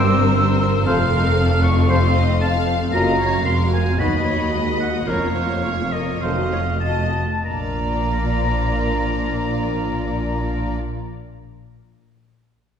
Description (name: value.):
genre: classical.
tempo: 93-118 BPM.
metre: 4/4.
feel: rubato.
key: unclear.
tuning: A4 = 437 Hz.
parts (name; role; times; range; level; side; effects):
clear symphonic violin section; melody; 0.0-10.8 s; C5 to F5; -29 LUFS; left 4 dB; none.
clear oboe; second line; 0.0-10.7 s; Eb5 to E6; -26 LUFS; right 1 dB; none.
mellow concert flute; second line; 0.0-10.7 s; Eb5 to F6; -29 LUFS; left 2 dB; none.
warm symphonic violin section; second line; 0.0-10.7 s; F4 to F5; -31 LUFS; left 3 dB; none.
rich symphonic viola section; accompaniment; 0.0-10.8 s; F#3 to Bb4; -27 LUFS; equal; none.
rich studio cello section; bass; 0.0-10.8 s; D#2 to Bb2; -23 LUFS; equal; none.
warm symphonic double bass section; bass; 0.0-10.7 s; F1 to D#2; -23 LUFS; right 2 dB; none.
mellow trombone section; sustained chords; 0.9-10.7 s; Bb2 to Gb3; -32 LUFS; left 1 dB; none.
warm French horn section; sustained chords; 0.9-10.7 s; A3 to F4; -30 LUFS; left 2 dB; none.
warm trumpet; stabs; 0.9-10.7 s; F#4 to C5; -31 LUFS; equal; none.
room: wet scoring stage reverb, RT60 1.9 s.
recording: heard from further back in the room.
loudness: -17 LUFS.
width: side -8 dB against mid.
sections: 0.0-7.4 A section; 7.4-12.4 B section.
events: slowing down 1.9-7.4.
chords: 0.0 C7/G; 0.9 F; 2.9 Gbmaj7; 4.0 B/D#; 5.1 Bbm/F; 6.2 F7b9; 7.4 Bb.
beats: 0.35 | 0.86 1.37 1.89 2.40 | 2.92 3.45 3.99 4.53 | 5.07 5.64 6.21 6.81 | 7.45 8.07 8.68 9.29 | 9.91 10.53.